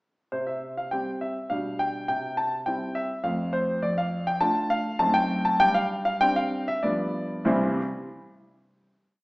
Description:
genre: classical-period piano sonatina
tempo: 94-104 BPM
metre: 3/4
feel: straight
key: C major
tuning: A4 = 440 Hz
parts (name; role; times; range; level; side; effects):
- warm concert grand piano; solo; 0.3-7.8 s; C2 to A5; -24 LUFS; equal; none
room: wet recital hall reverb, RT60 1.4 s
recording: heard from further back in the room, small speaker sound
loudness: -24 LUFS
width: side -23 dB against mid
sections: 0.3-7.5 A section; 7.5-9.2 final chord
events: slowing down 3.0-7.5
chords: 0.3 C5; 1.5 G7/B; 2.1 C; 3.3 F; 3.8 Dm/F; 5.0 F#dim7; 5.6 Gsus4; 6.8 G7; 7.5 C

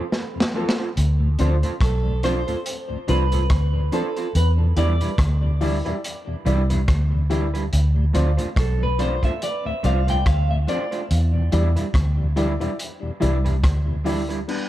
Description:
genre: roots reggae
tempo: 71 BPM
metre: 4/4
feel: swing 57% on 16ths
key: D dorian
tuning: A4 = 440 Hz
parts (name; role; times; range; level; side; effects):
- clean electric guitar; melody; 0.0-14.0 s; A4 to G5; -28 LUFS; right 1 dB; dub echo
- electric guitar at the edge of break-up; accompaniment; 0.0-14.4 s; G3 to C5; -30 LUFS; right 4 dB; dub echo
- crunchy breakbeat drum kit; drums; 0.1-14.7 s; crash cymbal, hi-hat, kick drum, rim click, snare drum; -24 LUFS; equal; none
- mellow tonewheel organ; accompaniment; 0.4-14.2 s; D2 to D4; -31 LUFS; left 1 dB; slow rotary speaker, dub echo
- warm upright piano; stabs; 0.5-14.7 s; G3 to D5; -29 LUFS; left 2 dB; none
- vintage muted fingered electric bass; bass; 1.0-14.4 s; B1 to E2; -19 LUFS; equal; none
room: little or no reverb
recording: dark, warm production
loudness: -19 LUFS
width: side -14 dB against mid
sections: 1.0-14.5 A section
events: break 0.0-1.0; drum fill 0.0-1.0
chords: 0.0 F; 1.0 Dm7; 4.3 Em7; 7.7 Dm7; 11.1 Em7

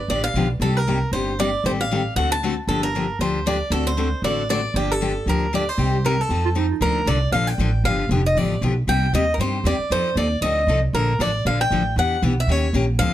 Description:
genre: acoustic string swing (jazz manouche)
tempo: 233 BPM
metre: 4/4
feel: swing 56% on 8ths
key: G minor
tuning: A4 = 440 Hz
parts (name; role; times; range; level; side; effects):
- picked swing-style acoustic guitar; melody; 0.0-13.1 s; G4 to A5; -23 LUFS; right 1 dB; none
- picked steel-string acoustic guitar; accompaniment; 0.1-13.1 s; C3 to Bb4; -24 LUFS; left 4 dB; none
- upright bass; bass; 0.1-13.1 s; F1 to G2; -22 LUFS; right 1 dB; none
- clear clarinet; second line; 6.5-6.8 s; Eb4 to F4; -26 LUFS; right 11 dB; tape echo
room: light reverb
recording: none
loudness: -18 LUFS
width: side -12 dB against mid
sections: 0.0-6.8 A section; 6.8-13.1 B section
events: none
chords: 0.0 G7; 0.6 Cm7; 1.6 Am7b5; 2.2 D7; 2.7 Gm7; 3.7 D7; 4.7 Gm7; 5.8 Cm7; 6.3 F7; 6.8 Bbmaj7; 7.8 G7; 8.9 Cm7; 9.9 F7; 10.9 Bbmaj7; 12.0 Em7; 12.5 Eb7

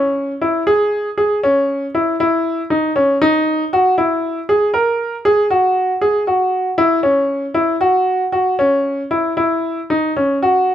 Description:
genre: contemporary instrumental, contemporary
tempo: 118 BPM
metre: 7/4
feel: straight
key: unclear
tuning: A4 = 440 Hz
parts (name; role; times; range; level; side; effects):
- bright grand piano; solo; 0.0-10.7 s; C#4 to A#4; -14 LUFS; equal; none
room: light reverb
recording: close, detailed microphones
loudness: -14 LUFS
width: side -10 dB against mid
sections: 0.0-10.4 A section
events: none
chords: none

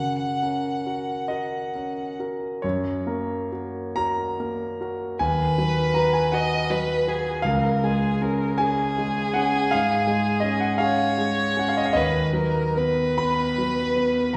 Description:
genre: classical, romantic duo for violin and grand piano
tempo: 43-56 BPM (dotted quarters)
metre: 12/8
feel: rubato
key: F# major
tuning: A4 = 440 Hz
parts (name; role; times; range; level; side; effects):
- rich violin; melody; 0.0-14.4 s; G#4 to F#5; -28 LUFS; equal; none
- warm concert grand piano; accompaniment; 0.0-14.4 s; C#2 to B5; -25 LUFS; equal; none
room: wet scoring stage reverb, RT60 1.7 s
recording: heard from further back in the room, nothing above 10.7 kHz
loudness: -24 LUFS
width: mono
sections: 0.0-2.6 A section; 2.6-14.4 A section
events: none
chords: 0.0 F#; 5.2 B/D#; 7.5 C#; 11.9 B/D#

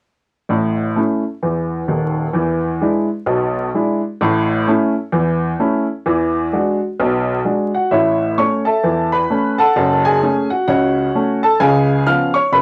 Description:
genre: jazz, stride piano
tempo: 130 BPM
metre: 4/4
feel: swing 61% on 8ths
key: A major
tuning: A4 = 441 Hz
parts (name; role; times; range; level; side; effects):
- clear upright piano; solo; 0.5-12.6 s; D#1 to E#6; -17 LUFS; equal; cassette tape
room: wet booth ambience, RT60 0.2 s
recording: home recording on cassette, vinyl crackle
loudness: -17 LUFS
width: mono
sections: 0.5-7.9 A section; 7.9-12.6 B section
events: none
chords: 0.5 A; 2.4 E7; 4.2 A; 6.1 E9; 7.9 A; 9.8 F#m; 11.6 C#7

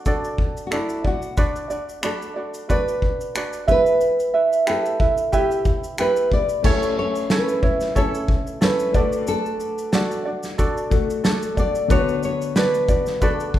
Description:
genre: acoustic pop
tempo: 91 BPM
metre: 4/4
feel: swing 55% on 16ths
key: A mixolydian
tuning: A4 = 442 Hz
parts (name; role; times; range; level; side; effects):
- nylon-string guitar; melody; 0.0-13.6 s; E4 to D5; -23 LUFS; equal; none
- ukulele; accompaniment; 0.0-13.6 s; C#4 to E5; -24 LUFS; right 2 dB; none
- loose indie drum kit; drums; 0.1-13.6 s; crash cymbal, finger snaps, kick drum, shaker, snare drum; -22 LUFS; equal; none
- felt-muted upright piano; accompaniment; 6.6-13.6 s; D3 to D5; -29 LUFS; left 6 dB; none
room: wet recital hall reverb, RT60 1.3 s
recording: recorded in a church or concert hall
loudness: -18 LUFS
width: side -12 dB against mid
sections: 0.0-6.6 A section; 6.6-13.6 B section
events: none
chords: 0.0 D; 1.4 Bm/D; 3.7 Em; 6.6 A; 8.9 D; 11.9 Bm/D

